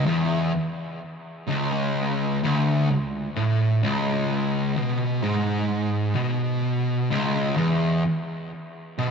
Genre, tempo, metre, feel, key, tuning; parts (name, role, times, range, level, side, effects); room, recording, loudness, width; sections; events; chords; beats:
metal; 64 BPM; 4/4; straight; C# minor; A4 = 440 Hz
fuzz guitar; solo; 0.0-9.1 s; C#2 to B2; -22 LUFS; equal; distortion, tape echo
wet stone room reverb, RT60 1.3 s; rough rehearsal-room recording, nothing above 7.8 kHz; -22 LUFS; side -6 dB against mid
0.0-9.1 A section
0.53 | 1.47 2.41 3.35 4.29 | 5.23 6.16 7.10 8.04 | 8.98